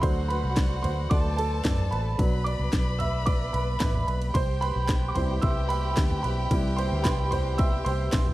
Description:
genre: piano-driven pop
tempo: 111 BPM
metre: 4/4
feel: straight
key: unclear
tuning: A4 = 440 Hz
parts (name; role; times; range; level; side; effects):
- rich chamber violin section; second line; 0.0-8.3 s; F#4 to B5; -35 LUFS; left 2 dB; none
- clear upright piano; accompaniment; 0.0-8.3 s; F#3 to E6; -29 LUFS; right 2 dB; none
- vintage muted fingered electric bass; bass; 0.0-8.3 s; A1 to F#2; -28 LUFS; equal; none
- house drum kit; drums; 0.0-8.3 s; handclaps, kick drum, ride cymbal, snare drum, toms; -26 LUFS; equal; none
- group handclap; percussion; 0.6-8.3 s; none; -44 LUFS; left 7 dB; none
room: light reverb, studio reverb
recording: dark, warm production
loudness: -23 LUFS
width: side -16 dB against mid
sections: 0.0-8.3 A section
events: upright piano solo 0.0-8.3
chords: 0.0 D; 2.2 Bm; 4.3 C

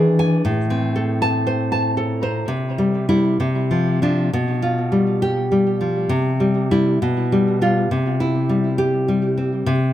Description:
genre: romantic piece for solo classical guitar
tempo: 58-69 BPM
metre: 2/4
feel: rubato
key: C major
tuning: A4 = 439 Hz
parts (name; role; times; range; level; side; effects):
- nylon-string guitar; solo; 0.0-9.9 s; A2 to A5; -17 LUFS; equal; tape echo
room: light reverb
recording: close, detailed microphones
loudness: -17 LUFS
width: side -12 dB against mid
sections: 0.0-2.5 A section; 2.5-9.9 B section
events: none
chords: 0.4 Am; 2.5 C; 3.4 Dm7/C; 4.3 G7/B; 6.1 C; 7.0 G7/B; 7.9 C

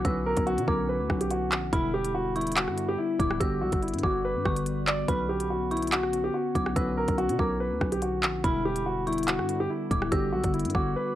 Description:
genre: hip hop, drill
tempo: 143 BPM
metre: 4/4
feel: half-time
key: B minor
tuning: A4 = 439 Hz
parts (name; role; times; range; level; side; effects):
- dark concert grand piano; melody; 0.0-11.2 s; E4 to D5; -29 LUFS; equal; none
- dark detuned synth bell; second line; 0.0-11.1 s; B5 to E6; -35 LUFS; right 2 dB; chorus, analog delay
- mellow tine electric piano; accompaniment; 0.0-11.2 s; D3 to F#4; -33 LUFS; left 2 dB; none
- glassy FM pad; sustained chords; 0.0-11.2 s; D3 to F#4; -40 LUFS; left 1 dB; none
- growling 808-style bass; bass; 0.0-11.0 s; D1 to B2; -32 LUFS; equal; none
- drill drum kit; drums; 0.0-10.9 s; handclaps, hi-hat, kick drum, rim click; -29 LUFS; equal; none
room: little or no reverb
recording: dry, gritty hardware recording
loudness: -25 LUFS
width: side -13 dB against mid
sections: 0.0-11.2 A section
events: break 11.0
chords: 0.0 Bmadd9; 1.7 Em7; 3.4 Gmaj7; 5.1 Bmadd9; 8.4 Em7; 10.1 Gmaj7

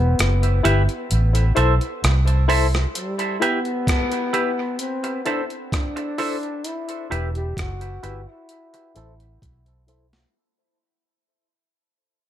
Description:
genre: dub reggae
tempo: 65 BPM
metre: 4/4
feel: straight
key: E minor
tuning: A4 = 440 Hz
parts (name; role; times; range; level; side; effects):
- breathy trombone; melody; 0.0-9.9 s; G3 to G4; -28 LUFS; left 2 dB; low-pass filter, dub echo
- vintage muted fingered electric bass; bass; 0.0-10.2 s; E1 to C2; -18 LUFS; equal; none
- breakbeat sampler-style drum kit; drums; 0.2-10.3 s; hi-hat, kick drum, rim click, snare drum; -26 LUFS; equal; none
- semi-hollow electric guitar; accompaniment; 0.6-10.2 s; E4 to E5; -26 LUFS; right 5 dB; low-pass filter, dub echo
- reed electric piano; stabs; 0.6-10.1 s; E4 to C5; -28 LUFS; left 6 dB; fast tremolo, low-pass filter, dub echo
room: light reverb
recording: echo-heavy mix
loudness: -19 LUFS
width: side -11 dB against mid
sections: 0.0-3.0 A section; 3.0-10.3 B section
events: break 0.0-3.0, 3.0-6.6; fade-out 3.0-10.3; filter sweep 3.0-10.3; drum fill 9.4-10.3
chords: 0.0 Em; 1.1 Am; 3.0 Em; 4.8 Am; 6.6 Em; 8.5 Am

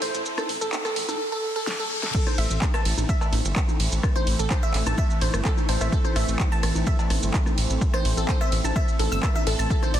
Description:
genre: progressive house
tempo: 127 BPM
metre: 4/4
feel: straight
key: A minor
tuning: A4 = 439 Hz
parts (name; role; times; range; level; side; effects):
- filtered supersaw swell; sustained chords; 0.0-10.0 s; D3 to E4; -32 LUFS; right 1 dB; sidechain pumping
- glassy wavetable pluck; arpeggios; 0.0-10.0 s; A4 to E6; -29 LUFS; equal; chorus, sidechain pumping, digital delay
- round analog bass; bass; 0.0-10.0 s; G1 to A1; -25 LUFS; equal; sidechain pumping
- pop drum kit; drums; 0.0-10.0 s; crash cymbal, handclaps, hi-hat, ride cymbal, shaker, snare drum; -30 LUFS; right 1 dB; none
- riser and reverse cymbal; sound effects; 0.0-2.1 s; none; -34 LUFS; left 2 dB; none
- electronic rim click, congas and cowbell; percussion; 0.4-9.9 s; none; -33 LUFS; left 2 dB; soft clipping on snare, sidechain pumping on snare, sidechain pumping on perc
- electronic kick drum; drums; 2.1-9.8 s; none; -24 LUFS; equal; overdrive
room: light reverb, digital ambience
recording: dense, heavily limited modern master, high-pass filter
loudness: -21 LUFS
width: side -11 dB against mid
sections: 0.0-2.1 A section; 2.1-10.0 B section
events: build-up 0.0-2.1; riser 0.0-2.1; filter sweep on supersaw synth 0.0-2.1; reverse cymbal 1.2-2.1; drum fill 1.7-2.1; drop 2.1-10.0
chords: 0.0 Dm7 (rootless); 2.1 Am

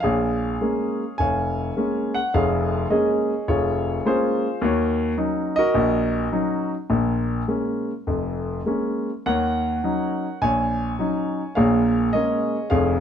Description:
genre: solo jazz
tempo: 104 BPM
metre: 4/4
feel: swing 68% on 8ths, rubato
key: Bb minor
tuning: A4 = 440 Hz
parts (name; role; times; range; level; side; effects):
- warm grand piano; solo; 0.0-13.0 s; F1 to Ab5; -20 LUFS; equal; none
room: moderate club reverb, RT60 0.9 s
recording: dark, warm production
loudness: -20 LUFS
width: side -8 dB against mid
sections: 0.0-13.0 A section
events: none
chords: 0.0 Bbm7; 4.6 Ebm7; 6.9 Bbm7; 9.3 Ebm7; 11.6 Bbm7

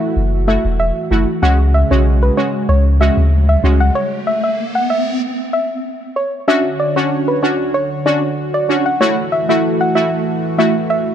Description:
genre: dancehall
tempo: 95 BPM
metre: 4/4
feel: straight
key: F# minor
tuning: A4 = 439 Hz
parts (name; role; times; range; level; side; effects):
- synth brass stab; accompaniment; 0.0-10.7 s; G#3 to F#4; -18 LUFS; right 1 dB; chorus
- warm analog pad; sustained chords; 0.0-11.1 s; C#3 to C#5; -22 LUFS; equal; chorus
- punchy sub bass; bass; 0.2-3.9 s; E1 to D2; -13 LUFS; equal; none
- soft round pluck; melody; 0.5-11.1 s; B4 to F#5; -18 LUFS; equal; chorus, tape echo
- riser; sound effects; 2.9-5.2 s; none; -24 LUFS; left 1 dB; none
room: light reverb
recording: dark, warm production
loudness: -13 LUFS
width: side -9 dB against mid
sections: 0.0-6.5 A section; 6.5-11.1 B section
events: riser 2.9-6.5; stop 4.0-6.5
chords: 0.0 F#m7; 1.4 C#sus4; 4.0 N.C.; 6.5 Dmaj7; 9.0 F#m7

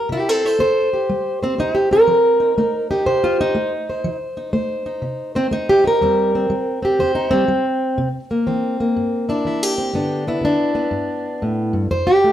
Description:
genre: acoustic country blues, solo or duo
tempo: 122 BPM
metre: 4/4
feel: swing 66% on 8ths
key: unclear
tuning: A4 = 440 Hz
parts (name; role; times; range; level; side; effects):
- fingerpicked plugged-in steel-string acoustic guitar; solo; 0.0-12.3 s; E2 to C5; -16 LUFS; equal; none
room: wet stone room reverb, RT60 1.1 s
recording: band playing live in one room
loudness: -16 LUFS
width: side -11 dB against mid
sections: 0.0-12.3 A section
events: none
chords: 0.0 C5; 2.1 F7; 6.0 C7; 9.9 G

